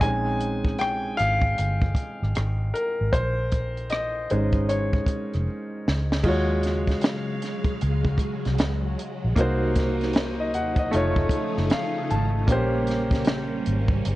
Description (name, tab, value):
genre	R&B, neo-soul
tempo	77 BPM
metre	4/4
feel	swing 63% on 16ths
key	unclear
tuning	A4 = 439 Hz
part	clear grand piano	accompaniment	0.0-14.2 s	Ab3 to A5	-26 LUFS	equal	none
part	vintage muted fingered electric bass	bass	0.0-14.2 s	F1 to Eb2	-26 LUFS	equal	tube saturation
part	compact cocktail drum kit	drums	0.0-14.2 s	crash cymbal, hi-hat, kick drum, rim click, snare drum	-25 LUFS	equal	none
part	phased string machine	sustained chords	6.2-14.2 s	C3 to F5	-31 LUFS	equal	ensemble chorus, phaser
room	light reverb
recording	worn, warbling old tape, cassette tape, warbly pitch drift, nothing above 10.7 kHz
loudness	-22 LUFS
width	side -17 dB against mid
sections	0.0-6.2 A section; 6.2-14.2 B section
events	grand piano solo 0.0-6.2; drum fill 5.5-6.2; grand piano fill 11.3-12.5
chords	0.0 Bbm11; 6.2 Ebm11; 9.4 Cm7b5; 10.9 F7alt; 12.5 Bbm69